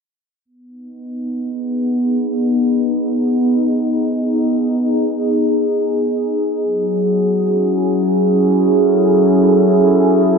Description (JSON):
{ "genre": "ambient", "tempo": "free time", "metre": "none", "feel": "none", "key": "unclear", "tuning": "A4 = 440 Hz", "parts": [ { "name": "warbly tape-like pad", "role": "sustained chords", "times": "1.0-10.4 s", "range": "F#3 to A4", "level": "-14 LUFS", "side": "equal", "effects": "chorus, built-in reverb" } ], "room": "wet huge ambient reverb, RT60 4.9 s", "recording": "low-pass filter", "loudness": "-14 LUFS", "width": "side -5 dB against mid", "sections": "0.5-10.4 A section", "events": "filter sweep 0.5-10.4", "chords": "0.5 G#m; 6.6 F#m7" }